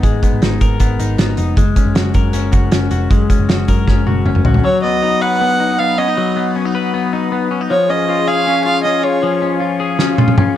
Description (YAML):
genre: jangly indie pop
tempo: 157 BPM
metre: 4/4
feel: straight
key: B lydian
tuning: A4 = 440 Hz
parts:
  - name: clean electric guitar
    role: arpeggios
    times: 0.0-10.6 s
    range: E#3 to B4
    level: -17 LUFS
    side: left 6 dB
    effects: lush chorus, plate reverb
  - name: vintage muted picked electric bass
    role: bass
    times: 0.0-4.6 s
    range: E#1 to G#2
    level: -17 LUFS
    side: right 1 dB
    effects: none
  - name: loose indie drum kit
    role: drums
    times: 0.0-4.6, 10.0-10.5 s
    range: hi-hat, kick drum, snare drum, toms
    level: -14 LUFS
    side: equal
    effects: none
  - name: warm violin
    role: melody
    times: 4.6-9.4 s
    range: C#5 to F#5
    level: -16 LUFS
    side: right 2 dB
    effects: plate reverb, analog delay
  - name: phased analog pad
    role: sustained chords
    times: 4.6-10.5 s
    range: G#4 to D#6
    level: -24 LUFS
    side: right 2 dB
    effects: phaser, chorus, plate reverb
room: light reverb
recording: dark, warm production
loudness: -12 LUFS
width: side -11 dB against mid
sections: 0.0-4.6 A section; 4.6-10.6 B section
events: drum fill 3.9-4.6, 10.0-10.6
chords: 0.0 G#madd9; 1.6 F#add9; 4.6 B; 7.7 C#